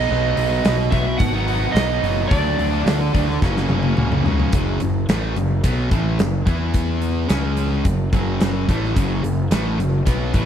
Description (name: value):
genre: classic rock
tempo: 108 BPM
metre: 4/4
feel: straight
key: unclear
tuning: A4 = 440 Hz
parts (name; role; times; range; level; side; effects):
- overdriven slide guitar; melody; 0.0-3.4 s; D5 to F#5; -23 LUFS; right 5 dB; slapback echo
- sludgy distorted guitar; riff; 0.0-10.5 s; F#2 to E4; -23 LUFS; equal; overdrive
- fuzz picked electric bass; bass; 0.0-10.5 s; F#1 to E2; -22 LUFS; equal; overdrive
- huge arena drum kit; drums; 0.4-10.5 s; hi-hat, kick drum, snare drum, toms; -22 LUFS; equal; none
room: little or no reverb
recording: none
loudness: -17 LUFS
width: side -9 dB against mid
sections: 0.0-4.5 A section; 4.5-10.5 B section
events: drum fill 3.4-4.5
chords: 0.0 B; 2.3 D; 3.4 F#; 4.5 F#5; 6.5 E5; 7.3 C#5; 7.8 F#5